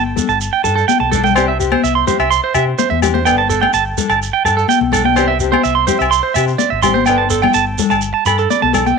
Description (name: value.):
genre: highlife guitar band.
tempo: 126 BPM.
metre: 4/4.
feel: straight.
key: unclear.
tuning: A4 = 437 Hz.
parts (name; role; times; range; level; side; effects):
clean electric guitar; arpeggios; 0.0-9.0 s; A4 to C6; -15 LUFS; right 10 dB; tape echo.
fingered electric bass; bass; 0.0-8.9 s; G1 to C3; -21 LUFS; left 1 dB; none.
fingerpicked acoustic archtop guitar; accompaniment; 0.2-8.9 s; E3 to A4; -21 LUFS; left 12 dB; none.
congas; percussion; 0.2-9.0 s; none; -19 LUFS; left 12 dB; none.
shekere; percussion; 0.2-8.9 s; none; -24 LUFS; right 5 dB; none.
agogo bells; percussion; 1.4-8.9 s; none; -21 LUFS; left 11 dB; none.
room: moderate spring reverb, RT60 1.8 s, small room ambience.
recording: 1960s-style stereo with parts hard left and right.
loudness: -12 LUFS.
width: side -5 dB against mid.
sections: 0.0-9.0 A section.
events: drum fill 1.0-1.4.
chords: 0.0 Gadd9; 1.4 Cadd9; 3.3 Gadd9; 5.2 Cadd9; 7.1 Gadd9.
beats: 0.40 0.88 | 1.35 1.83 2.31 2.78 | 3.26 3.74 4.21 4.69 | 5.17 5.64 6.12 6.60 | 7.07 7.55 8.03 8.51.